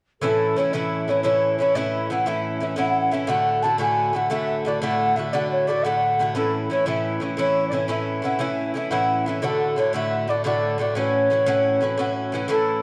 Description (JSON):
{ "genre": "celtic folk", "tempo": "117 BPM (dotted quarters)", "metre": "9/8", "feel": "straight", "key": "A major", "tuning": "A4 = 440 Hz", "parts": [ { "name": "baroque flute", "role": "melody", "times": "0.2-12.8 s", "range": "A4 to A5", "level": "-24 LUFS", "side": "equal", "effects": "none" }, { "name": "Irish bouzouki", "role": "accompaniment", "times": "0.2-12.8 s", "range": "A2 to F#4", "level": "-26 LUFS", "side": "equal", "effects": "none" } ], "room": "moderate recital hall reverb, RT60 1.7 s", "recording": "dark, warm production", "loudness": "-22 LUFS", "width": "mono", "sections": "0.2-12.5 A section", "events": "none", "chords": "0.2 A; 3.3 D; 6.3 A; 9.4 D; 10.9 A6" }